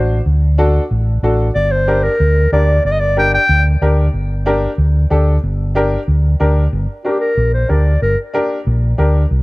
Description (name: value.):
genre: latin.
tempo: 186 BPM.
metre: 4/4.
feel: straight.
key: G harmonic minor.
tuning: A4 = 440 Hz.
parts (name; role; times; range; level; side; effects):
warm upright piano; accompaniment; 0.0-9.2 s; D4 to C5; -19 LUFS; left 1 dB; none.
fingered electric bass; bass; 0.0-9.4 s; G1 to D2; -13 LUFS; equal; none.
warm clarinet; melody; 1.5-3.6, 7.0-8.2 s; G4 to G5; -16 LUFS; equal; none.
room: little or no reverb.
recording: dark, warm production.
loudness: -12 LUFS.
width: side -22 dB against mid.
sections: 0.0-6.7 A section; 6.7-9.4 B section.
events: clarinet solo 6.7-9.4.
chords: 0.0 D; 1.6 Gm.